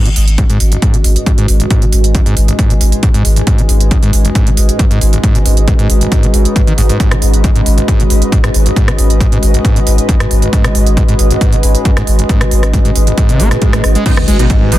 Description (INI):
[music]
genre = driving peak-time techno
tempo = 136 BPM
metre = 4/4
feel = straight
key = G# minor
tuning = A4 = 440 Hz
[part]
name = screaming distorted acid line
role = riff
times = 0.0-14.8 s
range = G#1 to B3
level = -17 LUFS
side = equal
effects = distortion, chorus, sidechain pumping, tape echo
[part]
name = analog drone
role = drone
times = 0.8-14.8 s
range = G#2 to G#3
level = -22 LUFS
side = left 1 dB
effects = chorus, sidechain pumping
[part]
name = warbly tape-like pad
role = texture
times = 0.2-14.8 s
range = C#4 to D#5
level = -19 LUFS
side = equal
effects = chorus, built-in reverb, sidechain pumping
[part]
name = saturated sub bass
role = bass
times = 0.1-14.8 s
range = G#1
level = -12 LUFS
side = equal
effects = overdrive, sidechain pumping, low-pass filter
[part]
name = techno drum kit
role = drums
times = 0.1-14.8 s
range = crash cymbal, hi-hat, rim click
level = -20 LUFS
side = right 2 dB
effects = soft clipping on snare
[part]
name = electronic kick drum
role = drums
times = 0.4-14.6 s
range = none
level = -12 LUFS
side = equal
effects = none
[part]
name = swell and impact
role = sound effects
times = 13.3-14.8 s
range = none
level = -21 LUFS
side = right 1 dB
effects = none
[part]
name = rave stab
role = stabs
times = 14.1-14.8 s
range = G#3 to D#4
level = -20 LUFS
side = right 2 dB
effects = chorus, built-in reverb, sidechain pumping, tape echo
[sound]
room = little or no reverb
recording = dense, heavily limited modern master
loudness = -8 LUFS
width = side -15 dB against mid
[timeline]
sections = 0.0-14.1 A section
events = swell 13.3-14.1; impact 14.1-14.8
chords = 0.0 G#m